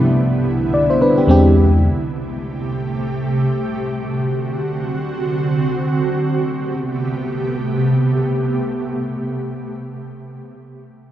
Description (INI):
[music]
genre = amapiano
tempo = free time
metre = none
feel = none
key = A minor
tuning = A4 = 441 Hz
[part]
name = mellow FM electric piano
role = accompaniment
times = 0.0-1.9 s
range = E2 to D5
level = -12 LUFS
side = left 1 dB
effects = chorus
[part]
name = ethereal airy pad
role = sustained chords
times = 0.0-9.2 s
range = C2 to G4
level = -19 LUFS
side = right 1 dB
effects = ensemble chorus, built-in reverb, tremolo
[sound]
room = moderate lush hall reverb, RT60 1.8 s, digital ambience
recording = worn, warbling old tape, cassette tape, warbly pitch drift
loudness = -16 LUFS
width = side -12 dB against mid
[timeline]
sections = 0.0-6.2 A section; 6.2-8.4 B section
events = none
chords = 0.0 Cmaj9; 1.3 E7alt; 1.8 Am7/C; 3.8 D7; 6.2 Am9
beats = free time